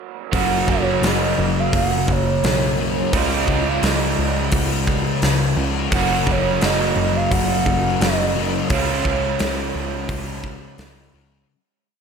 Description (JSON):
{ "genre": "rock, shoegaze and dream pop", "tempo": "86 BPM", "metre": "4/4", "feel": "straight", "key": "Db major", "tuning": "A4 = 435 Hz", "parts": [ { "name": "warbly nostalgic lead", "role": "melody", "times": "0.3-11.1 s", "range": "Db5 to Gb5", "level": "-24 LUFS", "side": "right 3 dB", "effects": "chorus, slapback echo" }, { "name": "raw garage guitar", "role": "riff", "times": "0.3-11.5 s", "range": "Gb2 to Gb4", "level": "-24 LUFS", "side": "right 14 dB", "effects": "overdrive, reverse reverb" }, { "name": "thick fuzz guitar", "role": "riff", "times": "0.3-11.5 s", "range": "Gb2 to Db4", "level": "-23 LUFS", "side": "left 9 dB", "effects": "distortion, ensemble chorus" }, { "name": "overdriven picked electric bass", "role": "bass", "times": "0.3-11.4 s", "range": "Gb1 to Db2", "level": "-25 LUFS", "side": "right 1 dB", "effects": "none" }, { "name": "big rock drum kit", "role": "drums", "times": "0.3-11.0 s", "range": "hi-hat, kick drum, snare drum", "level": "-23 LUFS", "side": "equal", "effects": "none" } ], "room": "light reverb", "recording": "none", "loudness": "-17 LUFS", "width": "side -6 dB against mid", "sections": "0.3-11.5 verse", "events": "fade-out 8.7-11.5", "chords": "0.3 Gb; 3.1 Dbadd9; 5.9 Gb; 8.7 Db", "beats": "| 0.33 1.04 1.74 2.44 | 3.14 3.84 4.53 5.23 | 5.93 6.62 7.32 8.01 | 8.71 9.41 10.10 10.80" }